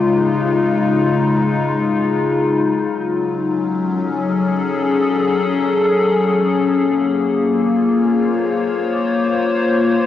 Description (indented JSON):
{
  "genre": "ambient",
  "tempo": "free time",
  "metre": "none",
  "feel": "none",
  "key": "unclear",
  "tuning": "A4 = 440 Hz",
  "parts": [
    { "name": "evolving wavetable pad", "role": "solo", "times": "0.0-10.1 s", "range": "Db3 to Db5", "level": "-15 LUFS", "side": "left 3 dB", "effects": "chorus, built-in reverb, cassette tape, tape echo" }
  ],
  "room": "wet spring reverb, RT60 1.2 s",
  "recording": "home recording on cassette",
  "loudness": "-15 LUFS",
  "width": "side -11 dB against mid",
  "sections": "0.0-10.1 A section",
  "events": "none",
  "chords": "0.0 Db; 2.4 Gbm; 6.7 Bbmadd9"
}